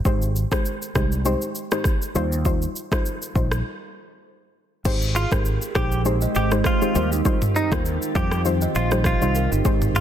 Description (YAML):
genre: afrobeats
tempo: 100 BPM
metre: 4/4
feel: swing 55% on 16ths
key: Eb major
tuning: A4 = 440 Hz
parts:
  - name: soft round pluck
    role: accompaniment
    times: 0.0-10.0 s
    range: G3 to C5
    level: -26 LUFS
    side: left 2 dB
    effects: chorus
  - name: fretless electric bass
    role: bass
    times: 0.1-10.0 s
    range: G1 to F2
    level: -23 LUFS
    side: equal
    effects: ensemble chorus
  - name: afro-pop drum kit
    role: drums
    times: 0.1-10.0 s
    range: crash cymbal, kick drum, rim click, shaker, toms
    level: -24 LUFS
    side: equal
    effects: overdrive
  - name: glassy FM pad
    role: sustained chords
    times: 5.3-10.0 s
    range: Eb3 to G4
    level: -29 LUFS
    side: right 1 dB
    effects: ensemble chorus, built-in reverb
  - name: direct-recorded clean electric guitar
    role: melody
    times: 5.2-10.0 s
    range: Eb4 to G4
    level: -27 LUFS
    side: equal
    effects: tape echo
  - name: kalimba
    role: riff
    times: 5.2-10.0 s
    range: Eb4 to Eb5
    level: -30 LUFS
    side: right 8 dB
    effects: none
room: light reverb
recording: dense, heavily limited modern master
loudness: -20 LUFS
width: side -10 dB against mid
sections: 0.0-4.9 A section; 4.9-10.0 B section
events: break 3.7-4.9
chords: 0.1 Abmaj7; 2.2 Eb69; 4.9 Abmaj7; 7.0 Eb69